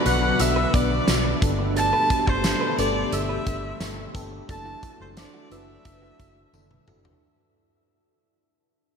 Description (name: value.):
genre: 1980s-style pop.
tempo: 88 BPM.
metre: 4/4.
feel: straight.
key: unclear.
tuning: A4 = 440 Hz.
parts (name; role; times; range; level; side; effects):
rich erhu; melody; 0.0-6.9 s; C5 to A5; -26 LUFS; equal; ping-pong delay.
glassy synth bell; second line; 0.0-6.9 s; C6 to A6; -35 LUFS; left 1 dB; chorus, ping-pong delay.
FM electric piano with soft pad layer; accompaniment; 0.0-7.2 s; G2 to D5; -30 LUFS; left 1 dB; chorus, phaser.
phased analog pad; sustained chords; 0.0-7.2 s; B2 to B4; -30 LUFS; equal; phaser, chorus.
direct-recorded clean electric guitar; riff; 0.0-7.1 s; A3 to B4; -35 LUFS; right 4 dB; none.
vintage muted fingered electric bass; bass; 0.1-7.1 s; F#1 to B1; -28 LUFS; equal; none.
big rock drum kit; drums; 0.1-7.2 s; hi-hat, kick drum, snare drum, tambourine, toms; -26 LUFS; equal; none.
tambourine; percussion; 1.1-6.7 s; none; -44 LUFS; left 7 dB; none.
room: wet cathedral reverb, RT60 6.6 s.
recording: dreamy mix soaked in reverb.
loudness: -20 LUFS.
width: side -6 dB against mid.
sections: 0.0-7.2 A section.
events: fade-out 0.0-7.2; drum fill 6.5-7.2.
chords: 0.0 Bm; 1.4 Gadd9; 4.5 Dadd9/F#.